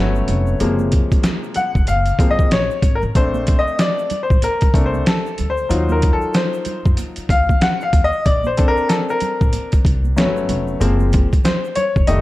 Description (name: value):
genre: hip hop, jazz-hop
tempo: 94 BPM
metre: 4/4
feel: swing 60% on 16ths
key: unclear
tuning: A4 = 439 Hz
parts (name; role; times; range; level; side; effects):
- clear baby grand piano; accompaniment; 0.0-12.2 s; C3 to Gb5; -19 LUFS; left 2 dB; none
- upright bass; bass; 0.0-12.2 s; F1 to Gb2; -20 LUFS; equal; none
- tube shaker and congas; percussion; 0.2-12.2 s; none; -32 LUFS; right 7 dB; none
- trip hop sampler-style drum kit; drums; 0.3-12.2 s; hi-hat, kick drum, snare drum; -17 LUFS; equal; overdrive, vintage 12-bit sampler grit
room: light reverb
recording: dark, warm production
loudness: -15 LUFS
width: side -17 dB against mid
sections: 0.0-12.2 A section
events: grand piano solo 0.0-12.2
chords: 0.0 Gmaj9#11; 0.6 Gbmaj9#11; 3.2 Bbmaj9; 5.7 Ebmadd9; 8.3 Bbmaj9; 10.2 Gmaj9#11; 10.8 Gbmaj9#11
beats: | 0.60 1.24 1.88 2.52 | 3.15 3.79 4.43 5.07 | 5.71 6.35 6.98 7.62 | 8.26 8.90 9.54 10.18 | 10.81 11.45 12.09